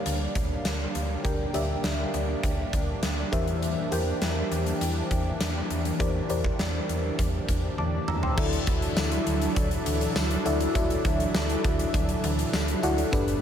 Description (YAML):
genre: 1980s-style pop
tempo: 101 BPM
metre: 4/4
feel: straight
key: unclear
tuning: A4 = 440 Hz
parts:
  - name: FM electric piano with soft pad layer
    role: accompaniment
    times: 0.0-13.4 s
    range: G2 to E6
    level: -30 LUFS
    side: left 2 dB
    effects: chorus
  - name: lush unison pad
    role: sustained chords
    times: 0.0-13.4 s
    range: E3 to D4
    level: -34 LUFS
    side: right 1 dB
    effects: chorus
  - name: slap-like FM bass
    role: bass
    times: 0.1-13.3 s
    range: G1 to E2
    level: -30 LUFS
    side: equal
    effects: none
  - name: huge arena drum kit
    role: drums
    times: 0.1-13.4 s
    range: crash cymbal, hi-hat, kick drum, snare drum, tambourine, toms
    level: -28 LUFS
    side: equal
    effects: gated reverb
  - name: analog synth brass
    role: stabs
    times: 8.4-13.4 s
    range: F#3 to B4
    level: -33 LUFS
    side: right 2 dB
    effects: chorus
room: light reverb, small room ambience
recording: none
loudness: -24 LUFS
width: side -9 dB against mid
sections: 0.0-8.4 A section; 8.4-13.4 B section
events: drum fill 7.8-8.4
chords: 0.0 Bb6/D; 3.3 C7/E; 8.4 Dadd9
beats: 0.06 0.65 | 1.25 1.84 2.44 3.03 | 3.62 4.22 4.81 5.41 | 6.00 6.59 7.19 7.78 | 8.38 8.97 9.56 10.16 | 10.75 11.35 11.94 12.53 | 13.13